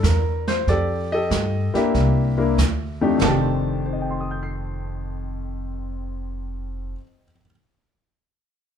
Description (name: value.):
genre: jazz piano trio.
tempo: 94 BPM.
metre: 4/4.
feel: swing 68% on 8ths.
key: F mixolydian.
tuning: A4 = 441 Hz.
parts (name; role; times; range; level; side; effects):
warm baby grand piano; melody; 0.0-7.5 s; F2 to C7; -24 LUFS; left 3 dB; none.
upright bass; bass; 0.0-6.9 s; F1 to G2; -24 LUFS; equal; none.
jazz brush drum kit; drums; 0.0-3.7 s; brushed snare drum, hi-hat, kick drum, snare drum, toms; -26 LUFS; right 4 dB; none.
room: light reverb.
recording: band playing live in one room.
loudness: -20 LUFS.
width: side -8 dB against mid.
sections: 0.0-3.2 A section; 3.2-5.8 B section.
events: none.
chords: 0.0 C9; 0.7 F13; 1.9 C9; 3.2 F13.